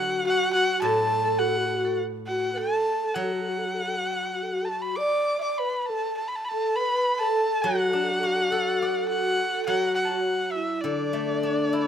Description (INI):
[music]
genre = chinese traditional, Chinese chamber ensemble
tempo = 103 BPM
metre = 4/4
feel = rubato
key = unclear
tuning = A4 = 440 Hz
[part]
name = clear erhu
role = melody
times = 0.0-11.9 s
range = D5 to D6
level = -26 LUFS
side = equal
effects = none
[part]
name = mellow xiao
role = second line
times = 0.0-11.9 s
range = D4 to E5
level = -29 LUFS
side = left 5 dB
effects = none
[part]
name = vibraphone with soft mallets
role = second line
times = 0.0-11.9 s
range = D4 to D5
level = -29 LUFS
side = right 4 dB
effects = none
[part]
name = steel-string zither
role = accompaniment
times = 0.0-11.9 s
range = A2 to D5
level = -32 LUFS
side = left 3 dB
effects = none
[sound]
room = light reverb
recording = close, detailed microphones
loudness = -23 LUFS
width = side -8 dB against mid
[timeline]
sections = 0.0-11.9 A section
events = none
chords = none